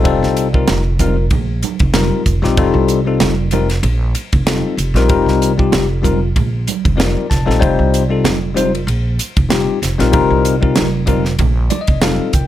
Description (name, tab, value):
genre	electric jazz fusion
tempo	95 BPM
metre	4/4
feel	swing 56% on 16ths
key	F mixolydian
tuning	A4 = 441 Hz
part	bell-like tine electric piano	accompaniment	0.0-12.5 s	G3 to A5	-16 LUFS	left 5 dB	phaser, plate reverb
part	upright bass	bass	0.0-12.5 s	F1 to C2	-17 LUFS	right 1 dB	none
part	crisp fusion drum kit	drums	0.1-12.5 s	hi-hat, kick drum, ride cymbal, snare drum	-18 LUFS	right 1 dB	none
part	congas	percussion	0.1-12.2 s	none	-23 LUFS	right 13 dB	none
room	light reverb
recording	none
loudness	-12 LUFS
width	side -12 dB against mid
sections	0.0-12.5 A section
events	tine electric piano fill 6.7-7.6, 11.4-12.5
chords	0.0 F9sus4